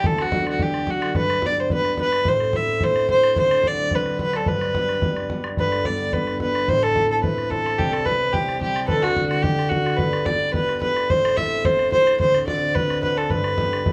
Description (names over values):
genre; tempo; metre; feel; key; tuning
celtic folk, Celtic reel; 217 BPM; 4/4; swing 53% on 8ths; G major; A4 = 440 Hz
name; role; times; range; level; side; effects
dark fiddle; melody; 0.0-13.9 s; F#4 to E5; -23 LUFS; equal; none
concert harp; accompaniment; 0.0-13.9 s; D1 to A4; -29 LUFS; equal; none
bodhran; percussion; 0.0-13.9 s; none; -29 LUFS; equal; none
room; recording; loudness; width
wet studio ambience, RT60 0.5 s; band playing live in one room; -21 LUFS; mono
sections
0.0-5.6 A section; 5.6-13.9 A section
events
none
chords
0.0 D; 1.2 G; 2.3 Am; 3.4 D7; 4.5 G; 6.7 Am; 7.8 C; 8.9 D; 10.0 G; 11.1 Am; 12.2 D7; 13.3 G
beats
| 0.04 0.32 0.60 0.88 | 1.15 1.43 1.71 1.98 | 2.26 2.54 2.81 3.09 | 3.37 3.65 3.92 4.20 | 4.48 4.75 5.03 5.31 | 5.58 5.86 6.13 6.41 | 6.69 6.96 7.24 7.51 | 7.79 8.07 8.34 8.62 | 8.89 9.17 9.44 9.72 | 9.99 10.27 10.55 10.82 | 11.10 11.38 11.65 11.93 | 12.20 12.48 12.76 13.03 | 13.31 13.59 13.86